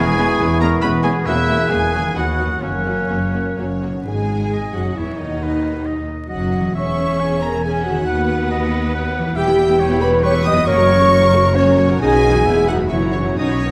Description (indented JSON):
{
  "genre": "classical, dramatic, fast romantic movement for symphony orchestra",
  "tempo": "119-141 BPM",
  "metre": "3/4",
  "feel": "rubato",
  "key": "B major",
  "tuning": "A4 = 439 Hz",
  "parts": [
    { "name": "rich symphonic violin section", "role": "melody", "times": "0.0-13.7 s", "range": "D#4 to D#6", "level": "-32 LUFS", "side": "equal", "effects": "none" },
    { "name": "mellow hollow silver concert flute", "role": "second line", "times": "0.0-13.7 s", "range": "C#5 to F#6", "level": "-27 LUFS", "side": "equal", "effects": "none" },
    { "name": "rich symphonic violin section", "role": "second line", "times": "0.0-13.7 s", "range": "C#4 to D#6", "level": "-30 LUFS", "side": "equal", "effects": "none" },
    { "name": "warm oboe", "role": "second line", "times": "0.0-13.7 s", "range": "C#4 to G#5", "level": "-29 LUFS", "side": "equal", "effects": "none" },
    { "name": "mellow bassoon", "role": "accompaniment", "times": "0.0-3.8 s", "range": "A#3 to B3", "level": "-30 LUFS", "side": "equal", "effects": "none" },
    { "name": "rich symphonic viola section", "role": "accompaniment", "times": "0.0-13.7 s", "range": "D#3 to B4", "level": "-28 LUFS", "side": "equal", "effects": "none" },
    { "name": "dark French horn section", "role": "sustained chords", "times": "0.0-13.7 s", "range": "C#4 to D#5", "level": "-22 LUFS", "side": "equal", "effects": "none" },
    { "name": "concert harp", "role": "arpeggios", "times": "0.0-13.7 s", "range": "E2 to B4", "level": "-29 LUFS", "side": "equal", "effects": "none" },
    { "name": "mellow trumpet", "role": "stabs", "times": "0.0-3.8 s", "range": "C#4 to B4", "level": "-29 LUFS", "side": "equal", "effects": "none" },
    { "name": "rich symphonic cello section", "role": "bass", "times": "0.0-13.7 s", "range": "D#2 to B2", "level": "-27 LUFS", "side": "equal", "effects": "none" },
    { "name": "rich symphonic double bass section", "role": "bass", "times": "0.0-13.7 s", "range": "E1 to D#2", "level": "-25 LUFS", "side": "equal", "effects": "none" }
  ],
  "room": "wet concert hall reverb, RT60 1.9 s",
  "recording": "vinyl crackle",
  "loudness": "-17 LUFS",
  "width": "mono",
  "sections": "0.0-4.1 A section; 4.1-13.7 B section",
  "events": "none",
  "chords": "0.0 C#m7/E; 1.3 F#7/E; 2.2 B/D#; 2.6 F#; 4.1 B; 5.4 G#m7/D#; 6.8 C#m/E; 8.1 B/D#; 9.4 Em; 10.7 F#; 12.0 B; 12.5 Emaj7; 12.9 F#7",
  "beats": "0.40 0.83 | 1.27 1.71 2.17 | 2.63 3.11 3.58 | 4.08 4.53 4.97 | 5.42 5.86 6.30 | 6.76 7.20 7.64 | 8.07 8.51 8.94 | 9.37 9.80 10.24 | 10.67 11.11 11.55 | 12.02 12.46 12.92 | 13.39"
}